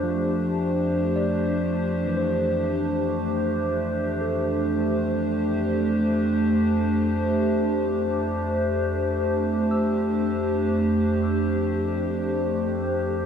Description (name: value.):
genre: ambient.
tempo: free time.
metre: none.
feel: none.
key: F major.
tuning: A4 = 440 Hz.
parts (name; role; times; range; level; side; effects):
warbly tape-like pad; sustained chords; 0.0-13.3 s; F2 to C5; -22 LUFS; equal; chorus, built-in reverb, phaser.
barky tine electric piano; arpeggios; 0.0-13.3 s; E3 to E6; -31 LUFS; equal; diffuse ambient delay.
room: wet lush hall reverb, RT60 2.8 s.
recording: dark, warm production.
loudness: -22 LUFS.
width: side -7 dB against mid.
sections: 0.0-13.3 A section.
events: fade-out on tine electric piano 0.0-13.3.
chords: 0.0 Fmaj7.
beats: free time.